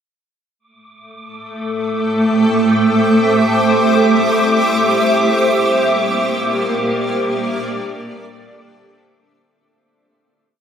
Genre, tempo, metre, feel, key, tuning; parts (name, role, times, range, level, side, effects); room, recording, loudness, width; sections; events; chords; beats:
ambient; free time; A4 = 442 Hz
granular cloud pad; sustained chords; 1.6-9.5 s; A3 to G5; -14 LUFS; right 1 dB; built-in reverb, wide subtle chorus
wind-like tuned noise texture; texture; 1.2-9.5 s; D6; -21 LUFS; equal; built-in reverb, analog chorus
wet huge ambient reverb, RT60 9.0 s; dreamy mix soaked in reverb; -13 LUFS; side -8 dB against mid
0.6-9.5 A section
fade-out 5.0-9.5
0.6 Am7; 2.8 C; 5.0 Gm/Bb; 7.3 Dm7
free time